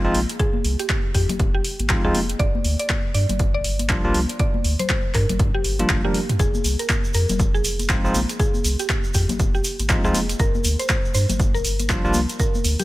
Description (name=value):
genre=deep house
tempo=120 BPM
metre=4/4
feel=swing 60% on 16ths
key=F dorian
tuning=A4 = 440 Hz
part: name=bell-like tine electric piano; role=stabs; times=0.0-12.2 s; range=F3 to Bb4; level=-25 LUFS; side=equal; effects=sidechain pumping, tape echo
part: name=warm sub bass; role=bass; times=0.0-12.8 s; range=F1 to G2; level=-23 LUFS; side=equal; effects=sidechain pumping
part: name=deep house drum kit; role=drums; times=0.1-12.8 s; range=handclaps, hi-hat, toms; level=-26 LUFS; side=equal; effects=small room ambience
part: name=congas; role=percussion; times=0.1-12.8 s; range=none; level=-31 LUFS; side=left 4 dB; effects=none
part: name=mallet-like synth pluck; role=melody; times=0.4-12.8 s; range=G4 to D5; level=-28 LUFS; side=right 1 dB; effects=chorus, digital delay
part: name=electronic kick drum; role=drums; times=0.4-12.5 s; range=none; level=-22 LUFS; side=equal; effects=small room ambience
part: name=tube shaker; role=percussion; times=6.4-12.8 s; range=none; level=-31 LUFS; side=right 2 dB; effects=none
room=little or no reverb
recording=none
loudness=-18 LUFS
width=side -17 dB against mid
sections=0.0-12.8 A section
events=drum fill 5.9-6.4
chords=0.0 Fm7; 2.4 Gm7; 6.4 Fm7; 10.4 Gm7